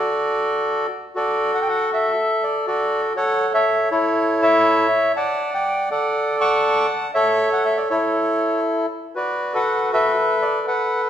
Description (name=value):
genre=tango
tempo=120 BPM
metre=4/4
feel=rubato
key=D major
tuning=A4 = 440 Hz
part: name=bandoneon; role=solo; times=0.0-11.1 s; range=E4 to C#6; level=-17 LUFS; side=equal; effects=none
room=wet recital hall reverb, RT60 1.3 s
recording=recorded in a church or concert hall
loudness=-17 LUFS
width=side -10 dB against mid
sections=0.0-1.1 A section; 1.1-11.1 B section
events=none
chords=0.0 D; 3.2 A; 5.2 D; 7.1 A; 9.1 D69/F#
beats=0.13 0.64 | 1.15 1.65 2.15 2.66 | 3.16 3.66 4.16 4.65 | 5.15 5.65 6.14 6.64 | 7.14 7.64 8.14 8.64 | 9.14 9.65 10.15 10.65